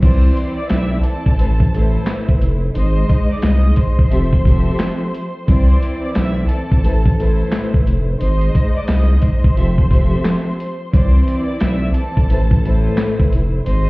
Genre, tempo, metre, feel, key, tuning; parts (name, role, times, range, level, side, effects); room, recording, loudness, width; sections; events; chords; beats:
hip hop, boom-bap hip-hop; 88 BPM; 4/4; swing 61% on 16ths; C major; A4 = 440 Hz
warm studio violin section; melody; 0.0-13.9 s; A4 to E6; -28 LUFS; equal; high-pass filter, low-pass filter, digital delay
warm studio string section; accompaniment; 0.0-13.9 s; Ab2 to E5; -22 LUFS; equal; cassette tape, high-pass filter, low-pass filter
saturated sub bass; bass; 0.0-13.9 s; F1 to C2; -14 LUFS; equal
dusty soul sampler-style drum kit; drums; 0.0-13.9 s; crash cymbal, handclaps, hi-hat, kick drum, snare drum; -16 LUFS; equal
digital ambience; heard muffled through a wall, club reverb, vinyl crackle, EQ; -13 LUFS; side -22 dB against mid
0.0-13.9 A section
0.0 Cmaj7; 1.4 Amadd9; 2.8 Ab; 4.1 Fmaj7; 5.5 Cmaj7; 6.8 Amadd9; 8.2 Ab; 9.6 Fmaj7; 10.9 Cmaj7; 12.3 Amadd9
| 0.03 0.71 1.39 2.07 | 2.75 3.43 4.12 4.80 | 5.48 6.16 6.84 7.53 | 8.21 8.89 9.57 10.25 | 10.93 11.62 12.30 12.98 | 13.66